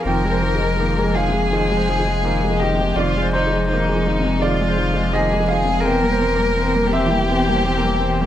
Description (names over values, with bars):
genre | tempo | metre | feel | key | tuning
neoclassical piano and strings | 83 BPM | 4/4 | rubato | F dorian | A4 = 440 Hz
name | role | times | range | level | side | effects
warm chamber violin section | melody | 0.0-8.3 s | Eb4 to Bb4 | -21 LUFS | left 1 dB | none
warm cello | second line | 0.0-8.3 s | Eb3 to G3 | -26 LUFS | right 4 dB | slapback echo
bright baby grand piano | accompaniment | 0.0-8.3 s | E2 to G5 | -22 LUFS | equal | none
warm viola | accompaniment | 0.0-8.3 s | F3 to C4 | -25 LUFS | right 1 dB | none
saturated sub bass | bass | 0.1-8.3 s | E1 to F1 | -24 LUFS | left 2 dB | none
room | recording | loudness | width
light reverb | close, detailed microphones | -16 LUFS | side -11 dB against mid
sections
0.0-8.3 A section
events
none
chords
0.0 Fm7; 5.9 C7/E